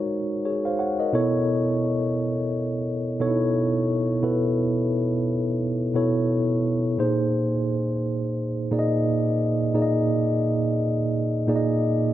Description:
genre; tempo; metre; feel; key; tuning
R&B; 87 BPM; 4/4; swing 59% on 16ths; unclear; A4 = 440 Hz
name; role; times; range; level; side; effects
mellow tine electric piano; solo; 0.0-12.1 s; Bb2 to Gb5; -21 LUFS; equal; slow stereo tremolo
room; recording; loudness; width
moderate plate reverb, RT60 3.0 s; none; -21 LUFS; side -13 dB against mid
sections
0.0-12.1 A section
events
none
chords
0.0 Ab9sus4; 1.1 B9sus4; 7.0 Bb9sus4

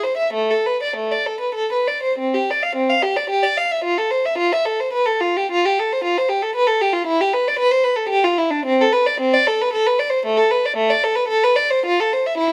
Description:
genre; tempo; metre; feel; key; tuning
classical, baroque-style suite movement for unaccompanied violin; 93-117 BPM; 3/4; rubato; C major, A minor from 8.7 s; A4 = 440 Hz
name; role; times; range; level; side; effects
rich violin; solo; 0.0-12.5 s; A3 to F5; -19 LUFS; equal; none
room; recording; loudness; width
moderate stone room reverb, RT60 1.0 s; none; -19 LUFS; mono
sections
0.0-2.2 A section; 2.2-12.5 A section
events
none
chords
none

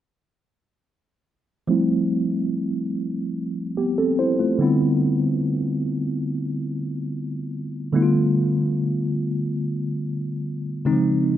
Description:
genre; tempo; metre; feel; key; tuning
R&B; 72 BPM; 4/4; straight; unclear; A4 = 439 Hz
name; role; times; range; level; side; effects
mellow tine electric piano; accompaniment; 1.7-11.4 s; Db3 to C5; -20 LUFS; equal; medium stereo tremolo, low-pass filter
room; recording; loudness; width
light reverb; none; -21 LUFS; side -11 dB against mid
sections
1.7-11.4 A section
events
filter sweep on tine electric piano 1.7-11.4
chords
1.7 Fmaj7; 4.6 Cmaj7; 7.9 G9; 10.9 Dbmaj7

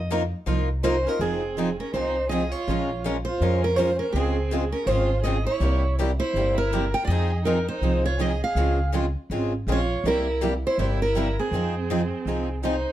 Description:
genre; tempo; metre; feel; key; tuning
acoustic string swing (jazz manouche); 163 BPM; 4/4; swing 62% on 8ths; F minor; A4 = 440 Hz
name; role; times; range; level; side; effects
picked steel-string acoustic guitar; melody; 0.0-12.9 s; Ab4 to G5; -26 LUFS; right 1 dB; slapback echo
upright bass; bass; 0.0-12.8 s; F1 to F2; -26 LUFS; equal; none
picked steel-string acoustic guitar; accompaniment; 0.1-12.7 s; C3 to Bb4; -29 LUFS; right 4 dB; none
picked swing-style acoustic guitar; accompaniment; 0.1-12.7 s; C3 to Bb4; -31 LUFS; left 6 dB; none
rich violin; second line; 0.8-12.9 s; C4 to Bb4; -33 LUFS; right 4 dB; slapback echo
room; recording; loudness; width
light reverb; dark, warm production; -22 LUFS; side -13 dB against mid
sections
0.0-1.2 A section; 1.2-12.9 B section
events
steel-string acoustic guitar solo 0.0-1.2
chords
0.0 F7sus4; 1.2 Fm7; 2.7 Bbm7; 4.1 Dbmaj7; 5.6 C7; 7.1 Fm7; 8.6 Dbmaj7; 10.0 C7; 11.5 Fm7

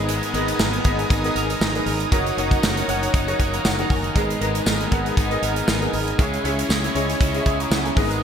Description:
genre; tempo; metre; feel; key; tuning
1980s-style pop; 118 BPM; 4/4; swing 55% on 16ths; G# minor; A4 = 440 Hz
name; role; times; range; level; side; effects
clear concert grand piano; accompaniment; 0.0-8.2 s; G#2 to D#6; -25 LUFS; left 1 dB; ensemble chorus
sludgy distorted guitar; accompaniment; 0.0-8.2 s; G#2 to D#4; -31 LUFS; left 1 dB; overdrive, lush chorus
brassy analog pad; sustained chords; 0.0-8.2 s; B3 to D#6; -28 LUFS; equal; chorus
electric guitar at the edge of break-up; riff; 0.0-8.2 s; F#3 to A#4; -29 LUFS; right 5 dB; lush chorus, digital delay
fretless electric bass; bass; 0.0-8.2 s; F#1 to C#2; -27 LUFS; equal; none
modern studio drum kit; drums; 0.1-8.2 s; hi-hat, kick drum, snare drum, tambourine; -23 LUFS; equal; gated reverb
room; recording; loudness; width
moderate lush hall reverb, RT60 1.6 s, small room ambience; bright 1980s-style digital production; -18 LUFS; side -8 dB against mid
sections
0.0-8.2 A section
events
grand piano fill 3.1-4.2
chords
0.0 G#madd9; 2.1 D#m7/F#; 4.2 G#madd9; 6.2 C#m

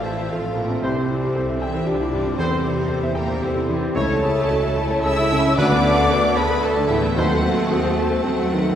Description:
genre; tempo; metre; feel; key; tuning
classical; 114 BPM; 3/4; rubato; A major from 4.0 s; A4 = 437 Hz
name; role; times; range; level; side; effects
clear concert grand piano; melody; 0.0-8.8 s; A1 to A5; -22 LUFS; left 1 dB; none
warm symphonic violin section; melody; 0.0-8.8 s; Bb4 to E6; -29 LUFS; left 2 dB; none
mellow clarinet; second line; 0.0-8.8 s; E4 to C5; -30 LUFS; equal; none
mellow hollow large flute ensemble; second line; 0.0-8.8 s; D4 to A5; -30 LUFS; left 1 dB; none
warm symphonic violin section; second line; 0.0-8.8 s; G3 to C#4; -30 LUFS; left 1 dB; none
warm symphonic viola section; accompaniment; 0.0-8.8 s; Bb3 to E5; -27 LUFS; right 2 dB; none
rich symphonic cello section; bass; 0.0-8.8 s; Bb2 to E4; -28 LUFS; right 2 dB; none
warm symphonic double bass section; bass; 0.0-8.8 s; A1 to F#2; -28 LUFS; right 1 dB; none
mellow French horn section; sustained chords; 0.8-7.3 s; G3 to G4; -31 LUFS; equal; none
bright trumpet section; stabs; 0.8-7.3 s; B4 to C#5; -30 LUFS; right 1 dB; none
room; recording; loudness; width
wet concert hall reverb, RT60 1.9 s; heard from further back in the room; -18 LUFS; side -9 dB against mid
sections
0.0-8.8 A section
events
none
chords
0.0 F/A; 0.8 C; 2.4 C/E; 4.0 A/C#; 5.6 Bm7/D; 7.2 D#dim7

